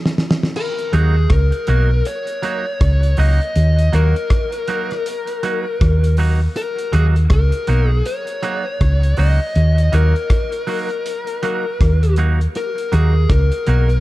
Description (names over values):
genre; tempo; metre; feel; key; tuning
roots reggae; 80 BPM; 4/4; swing 59% on 16ths; Eb minor; A4 = 442 Hz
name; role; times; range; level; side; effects
cloth-damped thuddy drum kit; drums; 0.1-14.0 s; crash cymbal, hi-hat, kick drum, rim click, snare drum; -19 LUFS; equal; none
fuzz lead guitar; melody; 0.6-14.0 s; Ab4 to Eb5; -23 LUFS; left 2 dB; distortion, tape echo
clean electric guitar; accompaniment; 0.9-13.9 s; Gb3 to Gb4; -26 LUFS; right 5 dB; warbly pitch drift, tape echo
hollow-body short-scale fingered electric bass; bass; 0.9-14.0 s; Cb2 to Eb2; -13 LUFS; equal; none
room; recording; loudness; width
little or no reverb; dark, warm production; -14 LUFS; side -17 dB against mid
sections
0.6-14.0 A section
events
drum fill 0.0-0.6; stop 0.0-0.6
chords
0.0 N.C.; 0.6 Ebm